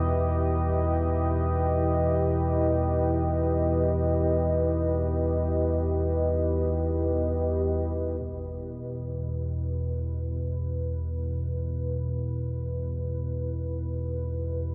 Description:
dark ambient drone; free time; A4 = 439 Hz
dark analog pad; sustained chords; 0.0-14.7 s; E4 to D#5; -31 LUFS; equal; chorus
deep rumbling drone; drone; 0.0-14.7 s; E2 to B2; -30 LUFS; equal; built-in reverb
impact; percussion; 8.2-8.4 s; -53 LUFS; equal
wet huge ambient reverb, RT60 8.4 s; worn, warbling old tape, cassette tape, warbly pitch drift; -28 LUFS; mono
0.0-8.2 A section; 8.2-14.7 B section
0.0 Em

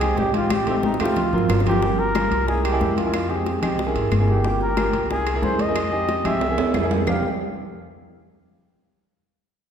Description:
Afro-Cuban jazz; 183 BPM; 4/4; straight; F harmonic minor; A4 = 440 Hz
breathy trumpet; melody; 0.0-7.2 s; C4 to F5; -25 LUFS; equal
warm concert grand piano; accompaniment; 0.0-7.2 s; F#3 to Ab4; -24 LUFS; right 1 dB
upright bass; bass; 0.0-7.2 s; F1 to F2; -25 LUFS; equal
bongos; percussion; 0.0-7.1 s; -33 LUFS; left 4 dB
claves; percussion; 0.0-7.1 s; -38 LUFS; left 3 dB
congas; percussion; 0.0-7.1 s; -28 LUFS; left 1 dB
timbales; percussion; 0.0-7.1 s; -29 LUFS; right 4 dB
wet concert hall reverb, RT60 1.8 s; recorded in a church or concert hall; -19 LUFS; side -8 dB against mid
0.0-1.8 A section; 1.8-7.1 B section; 7.1-8.4 C section
drum fill 0.5-1.8, 6.4-7.1
0.0 Fm9; 0.5 Am7b5; 1.2 D7alt; 1.8 Gm7b5; 2.5 C7b9b13; 3.1 Fm9; 3.8 C7b9b13; 4.4 Gm7b5; 5.1 C7b9b13; 5.8 Fm9; 6.4 C7b9b13; 7.1 Fm9

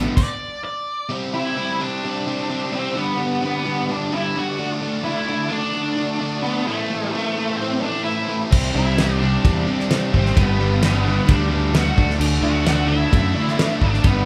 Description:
classic rock; 130 BPM; 4/4; straight; A4 = 440 Hz
overdriven tonewheel organ; sustained chords; 0.0-14.3 s; F#3 to E5; -37 LUFS; equal
biting overdriven guitar; riff; 0.0-14.2 s; G2 to D4; -26 LUFS; equal
crunchy overdriven guitar; riff; 0.0-0.1, 8.5-14.3 s; G2 to D4; -27 LUFS; equal; spring reverb
fingered electric bass; bass; 0.0-0.1, 8.5-14.3 s; G1 to F#2; -24 LUFS; equal
octave-fuzz lead guitar; melody; 0.2-14.3 s; A3 to D5; -27 LUFS; equal; wah, distortion
damped 70s drum kit; drums; 0.2-0.3, 8.5-14.2 s; crash cymbal, kick drum, ride cymbal, snare drum; -22 LUFS; equal
moderate large studio reverb, RT60 1.3 s; band playing live in one room; -20 LUFS; mono
0.0-1.1 A section; 1.1-14.3 B section
lead electric guitar solo 0.0-1.1; stop 0.2-1.1
0.0 Dadd9; 1.1 C; 3.0 G; 4.6 D; 6.7 Am; 8.5 C; 10.4 G; 12.0 D

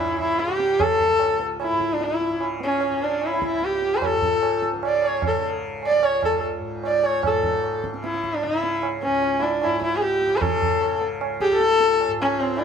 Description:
indian classical, Hindustani; 150 BPM; 4/4; straight; C# raga todi; A4 = 441 Hz
rich sarangi; melody; 0.0-12.6 s; C#4 to D5; -21 LUFS; left 1 dB
accordion; second line; 0.0-7.3 s; C#4 to D5; -32 LUFS; left 2 dB
tanpura; drone; 0.0-12.6 s; C#2 to C#3; -33 LUFS; left 1 dB
tabla; percussion; 0.2-12.6 s; -28 LUFS; right 7 dB
moderate large studio reverb, RT60 1.2 s; band playing live in one room; -20 LUFS; side -7 dB against mid
0.0-7.2 A section; 7.2-12.6 B section

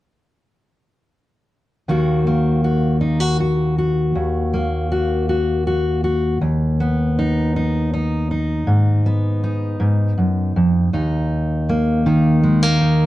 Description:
folk; 53 BPM (dotted quarters); 6/8; straight; Eb minor; A4 = 440 Hz
fingerpicked steel-string acoustic guitar; accompaniment; 1.9-13.1 s; Eb2 to Gb4; -16 LUFS; equal
moderate studio reverb, RT60 0.9 s; dark, warm production; -16 LUFS; side -16 dB against mid
1.9-10.9 A section; 10.9-13.1 B section
1.9 Ebm; 6.4 B/D#; 8.7 Abm; 10.9 Eb5

